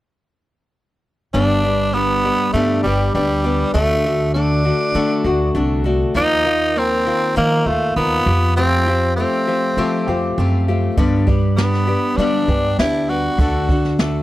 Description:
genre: folk rock and heartland rock.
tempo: 100 BPM.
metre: 4/4.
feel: straight.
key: G major.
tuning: A4 = 441 Hz.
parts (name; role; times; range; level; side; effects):
growling tenor saxophone; melody; 1.3-14.0 s; G3 to F#4; -19 LUFS; right 1 dB; none.
picked acoustic archtop guitar; accompaniment; 1.3-14.2 s; G2 to Bb4; -22 LUFS; left 3 dB; none.
electric guitar through a small old amp; riff; 1.3-14.2 s; G2 to G4; -24 LUFS; right 1 dB; lush chorus.
upright bass; bass; 1.3-14.2 s; G1 to G3; -20 LUFS; equal; none.
jazz brush drum kit; drums; 11.0-14.1 s; hi-hat, kick drum, snare drum; -19 LUFS; equal; none.
room: light reverb.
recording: dry, close 1970s-style studio recording.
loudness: -15 LUFS.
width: side -16 dB against mid.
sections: 1.3-14.2 A section.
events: none.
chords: 1.3 G; 3.8 D; 6.2 Ebsus2; 8.3 Fadd9; 11.0 G; 13.4 D.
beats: | 1.34 1.94 2.54 3.15 | 3.75 4.35 4.95 5.56 | 6.16 6.76 7.36 7.96 | 8.57 9.17 9.77 10.37 | 10.98 11.58 12.18 12.78 | 13.38 13.99.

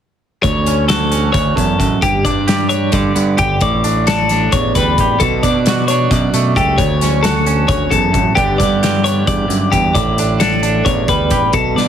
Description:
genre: math rock and midwest emo.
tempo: 265 BPM (eighths).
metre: 7/8.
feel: straight.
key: D major.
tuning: A4 = 441 Hz.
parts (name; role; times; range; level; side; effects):
twangy electric guitar; accompaniment; 0.4-11.9 s; D2 to A4; -18 LUFS; right 7 dB; plate reverb.
twelve-string electric guitar; arpeggios; 0.4-11.9 s; G4 to D5; -17 LUFS; left 5 dB; plate reverb.
growling fingered electric bass; bass; 0.4-11.9 s; G1 to B2; -18 LUFS; equal; overdrive.
loose indie drum kit; drums; 0.4-11.9 s; hi-hat, kick drum, snare drum; -18 LUFS; left 1 dB; none.
room: light reverb.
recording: heavily compressed radio sound.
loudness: -12 LUFS.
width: side -9 dB against mid.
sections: 0.4-11.9 A section.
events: none.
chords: 0.4 Dmaj7; 2.0 G; 3.6 A7sus4; 5.2 Bm7; 6.8 Dmaj7; 8.4 G; 9.9 A7sus4.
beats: | 0.44 0.66 0.89 1.11 1.34 1.57 1.79 | 2.02 2.25 2.47 2.70 2.93 3.15 3.38 | 3.61 3.83 4.06 4.29 4.51 4.74 4.97 | 5.19 5.42 5.65 5.87 6.10 6.33 6.55 | 6.78 7.00 7.23 7.46 7.68 7.91 8.13 | 8.36 8.59 8.81 9.04 9.27 9.49 9.72 | 9.95 10.17 10.40 10.62 10.85 11.08 11.30 | 11.53 11.76.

